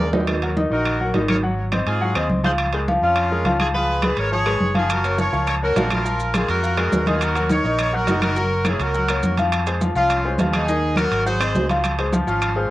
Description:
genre	latin, salsa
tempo	208 BPM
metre	4/4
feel	straight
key	unclear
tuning	A4 = 440 Hz
part	brilliant horn section	melody	0.0-12.7 s	Db4 to D5	-24 LUFS	equal	cassette tape, tape echo
part	clear concert grand piano	accompaniment	0.0-12.7 s	Eb3 to Gb5	-22 LUFS	left 2 dB	none
part	fingered electric bass	bass	0.0-12.7 s	Gb1 to Ab2	-24 LUFS	equal	none
part	congas	percussion	0.1-12.7 s	none	-25 LUFS	equal	none
part	timbales	percussion	0.1-12.6 s	none	-27 LUFS	right 4 dB	none
part	claves	percussion	0.3-12.6 s	none	-30 LUFS	left 3 dB	none
part	maracas	percussion	4.9-12.6 s	none	-40 LUFS	right 5 dB	none
room	wet booth ambience, RT60 0.2 s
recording	home recording on cassette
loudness	-18 LUFS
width	side -16 dB against mid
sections	0.0-12.7 A section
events	drum fill 0.0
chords	0.3 Ebm; 1.4 Ab7; 2.6 Db6; 3.7 Db7; 4.9 Gbmaj7; 6.1 Bb5; 7.2 Ebm7; 8.4 Gb; 9.5 Fm7; 10.7 Ebm; 11.3 Ab7; 11.8 Dbmaj7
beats	| 0.28 0.57 0.85 1.14 | 1.43 1.72 2.01 2.30 | 2.59 2.87 3.16 3.45 | 3.74 4.03 4.32 4.61 | 4.89 5.18 5.47 5.76 | 6.05 6.34 6.63 6.92 | 7.21 7.50 7.79 8.08 | 8.37 8.65 8.95 9.23 | 9.52 9.81 10.10 10.39 | 10.68 10.97 11.26 11.55 | 11.84 12.12 12.41 12.70

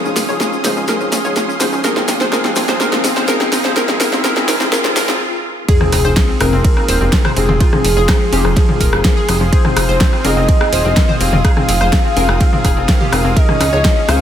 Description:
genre	progressive house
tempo	125 BPM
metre	4/4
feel	straight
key	F minor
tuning	A4 = 440 Hz
part	supersaw pad	sustained chords	0.0-14.2 s	Ab4 to Eb6	-24 LUFS	right 1 dB	sidechain pumping
part	analog pluck	arpeggios	0.0-14.2 s	F3 to Db5	-21 LUFS	left 1 dB	chorus, sidechain pumping, dub echo
part	felt-muted upright piano	stabs	0.0-14.2 s	F3 to Bb4	-22 LUFS	left 2 dB	sidechain pumping, low-pass filter, dub echo
part	riser and sub drop	sound effects	0.0-7.6 s	none	-23 LUFS	equal	none
part	tube shaker	percussion	0.1-5.2 s	none	-28 LUFS	left 5 dB	none
part	plucky analog bass	bass	0.2-14.2 s	Eb1 to Db2	-18 LUFS	equal	sidechain pumping, high-pass filter
part	pop drum kit	drums	0.2-14.2 s	hi-hat, ride cymbal, rim click, snare drum	-19 LUFS	equal	none
part	soft octave-layered synth lead	melody	5.7-14.2 s	Ab4 to F5	-19 LUFS	equal	chorus, phaser, cassette tape, sidechain pumping, dub echo
part	electronic kick drum	drums	5.7-13.9 s	none	-13 LUFS	equal	none
part	punchy analog drum machine	percussion	5.8-14.2 s	congas, rim click, toms	-20 LUFS	left 2 dB	sidechain pumping on toms, sidechain pumping on snare, sidechain pumping on perc
room	light reverb, digital ambience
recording	high-pass filter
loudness	-11 LUFS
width	side -10 dB against mid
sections	0.0-5.7 A section; 5.7-14.2 B section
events	build-up 0.0-5.7; drum fill 0.0-5.2; riser 0.0-5.2; filter sweep on synth pluck 0.0-5.7; filter sweep on felt piano 0.0-5.7; stop 5.2-5.7; drop 5.7-14.2; impact 5.7-7.6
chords	0.0 Dbadd9; 1.8 Ab6; 5.7 Fm7; 13.4 Dbadd9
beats	0.41 0.89 1.36 | 1.84 2.33 2.81 3.29 | 3.77 4.25 4.72 5.21 | 5.68 6.17 6.64 7.12 | 7.61 8.09 8.56 9.04 | 9.53 10.01 10.48 10.96 | 11.45 11.93 12.40 12.88 | 13.37 13.85

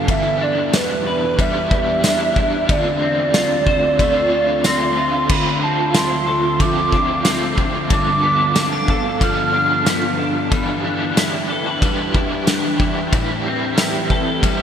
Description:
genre	dream pop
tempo	92 BPM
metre	4/4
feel	straight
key	D dorian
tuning	A4 = 440 Hz
part	warbly nostalgic lead	melody	0.0-10.2 s	B4 to F6	-20 LUFS	right 1 dB	chorus, shimmer reverb, digital delay
part	raw garage guitar	accompaniment	0.0-14.6 s	E2 to A4	-23 LUFS	right 1 dB	overdrive, tremolo, ensemble chorus, shimmer reverb
part	ethereal airy pad	sustained chords	0.0-14.6 s	D2 to G5	-24 LUFS	equal	ensemble chorus, built-in reverb, shimmer reverb
part	clean electric guitar	arpeggios	0.0-14.6 s	G2 to C5	-23 LUFS	left 2 dB	ensemble chorus, shimmer reverb, digital delay
part	loose indie drum kit	drums	0.1-14.6 s	crash cymbal, kick drum, ride cymbal, snare drum, tambourine	-20 LUFS	equal	gated reverb
room	wet lush hall reverb, RT60 2.8 s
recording	bright 1980s-style digital production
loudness	-15 LUFS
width	side -8 dB against mid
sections	0.0-5.3 A section; 5.3-14.6 B section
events	none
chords	0.1 Em7; 2.7 Dm7; 7.9 G9; 10.5 Em7; 13.1 Am7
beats	| 0.08 0.73 1.39 2.04 | 2.69 3.34 4.00 4.65 | 5.30 5.95 6.60 7.26 | 7.91 8.56 9.21 9.87 | 10.52 11.17 11.82 12.47 | 13.13 13.78 14.43

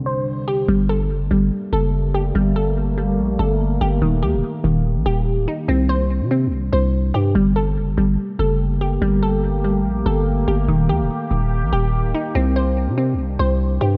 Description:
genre	hip hop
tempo	144 BPM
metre	4/4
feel	half-time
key	G harmonic minor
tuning	A4 = 441 Hz
part	muted felt-like synth keys	accompaniment	0.0-0.7 s	C3 to D4	-30 LUFS	equal	chorus, low-pass filter
part	deep dark ambient pad	sustained chords	0.0-14.0 s	C2 to G4	-30 LUFS	equal	chorus, built-in reverb
part	glassy wavetable pluck	arpeggios	0.0-14.0 s	Eb3 to C5	-24 LUFS	equal	chorus, low-pass filter, digital delay
part	growling 808-style bass	bass	0.7-14.0 s	D1 to C3	-22 LUFS	equal	none
room	light reverb, digital ambience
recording	low-pass filter, nothing above 7.5 kHz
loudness	-19 LUFS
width	mono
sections	0.7-14.0 A section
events	none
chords	0.0 Csus2; 0.7 Gmadd9; 4.0 Eb; 5.7 Csus2; 7.4 Gmadd9; 10.7 Eb; 12.4 Csus2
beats	0.27 | 0.68 1.10 1.52 1.93 | 2.35 2.77 3.18 3.60 | 4.02 4.43 4.85 5.27 | 5.68 6.10 6.52 6.93 | 7.35 7.77 8.18 8.60 | 9.02 9.43 9.85 10.27 | 10.68 11.10 11.52 11.93 | 12.35 12.77 13.18 13.60

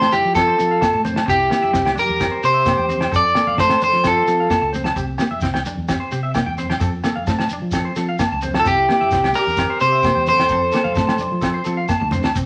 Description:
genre	highlife guitar band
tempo	130 BPM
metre	4/4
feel	straight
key	unclear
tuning	A4 = 441 Hz
part	electric guitar at the edge of break-up	melody	0.0-4.7, 8.6-11.9 s	G4 to D5	-19 LUFS	equal	none
part	warm alto saxophone	second line	0.0-4.7, 8.6-11.9 s	E4 to A4	-31 LUFS	equal	none
part	electric guitar at the edge of break-up	accompaniment	0.0-12.5 s	Bb3 to D4	-30 LUFS	equal	none
part	electric guitar at the edge of break-up	arpeggios	0.0-12.3 s	G4 to A5	-29 LUFS	equal	none
part	fingered electric bass	bass	0.0-12.5 s	C2 to F3	-28 LUFS	equal	none
part	damped 70s drum kit	drums	0.0-12.5 s	kick drum, snare drum, toms	-27 LUFS	equal	none
part	agogo bells	percussion	0.0-12.4 s	none	-30 LUFS	equal	none
part	congas	percussion	0.0-12.2 s	none	-34 LUFS	equal	none
part	shekere	percussion	0.1-12.5 s	none	-32 LUFS	equal	none
room	wet studio reverb, RT60 0.7 s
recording	none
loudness	-18 LUFS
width	mono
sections	0.0-12.4 A section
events	drum fill 11.9-12.4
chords	0.0 F; 1.3 C; 3.1 F; 5.0 C; 6.8 F; 8.7 C; 10.5 F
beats	0.36 0.82 | 1.28 1.74 2.20 2.67 | 3.13 3.59 4.05 4.51 | 4.97 5.43 5.89 6.35 | 6.82 7.28 7.74 8.20 | 8.66 9.12 9.58 10.05 | 10.51 10.97 11.43 11.89 | 12.36

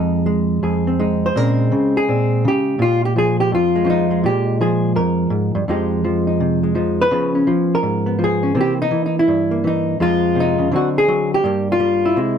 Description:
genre	solo jazz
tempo	166 BPM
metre	4/4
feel	swing 63% on 8ths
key	F minor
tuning	A4 = 440 Hz
part	hollow-body jazz guitar	solo	0.0-12.4 s	F2 to C5	-15 LUFS	equal	none
room	light reverb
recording	dark, warm production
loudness	-15 LUFS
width	side -8 dB against mid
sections	0.0-12.4 A section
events	none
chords	0.0 Fm7; 1.3 Bbm9; 5.7 Fm9; 7.1 Db7; 8.6 C7#9; 10.0 Fm7; 10.7 D7b9; 11.4 Gm7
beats	0.27 0.63 0.99 | 1.35 1.71 2.07 2.43 | 2.79 3.15 3.51 3.88 | 4.24 4.60 4.96 5.32 | 5.68 6.04 6.40 6.76 | 7.12 7.48 7.84 8.20 | 8.56 8.92 9.28 9.64 | 10.00 10.36 10.72 11.08 | 11.44 11.80 12.16

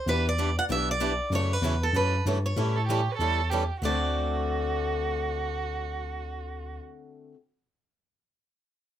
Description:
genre	acoustic string swing (jazz manouche)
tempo	191 BPM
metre	4/4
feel	swing 60% on 8ths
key	D mixolydian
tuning	A4 = 440 Hz
part	picked steel-string acoustic guitar	melody	0.0-6.8 s	A4 to F#5	-30 LUFS	right 1 dB	none
part	picked steel-string acoustic guitar	accompaniment	0.1-7.4 s	C#3 to A4	-34 LUFS	left 8 dB	none
part	picked swing-style acoustic guitar	accompaniment	0.1-7.4 s	D3 to B4	-35 LUFS	right 7 dB	none
part	tine electric piano	bass	0.1-6.8 s	B1 to A2	-29 LUFS	equal	none
part	warm violin	second line	2.8-6.8 s	F#4 to B4	-32 LUFS	right 8 dB	none
room	light reverb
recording	rough home demo mix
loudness	-25 LUFS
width	side -10 dB against mid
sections	0.0-3.8 A section; 3.8-6.3 B section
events	none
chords	0.1 Em7; 1.3 F#m7; 2.6 A7; 3.8 D7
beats	| 0.07 0.38 0.69 1.00 | 1.32 1.63 1.94 2.26 | 2.57 2.88 3.20 3.51 | 3.83 4.14 4.45 4.76 | 5.08 5.39 5.71 6.02

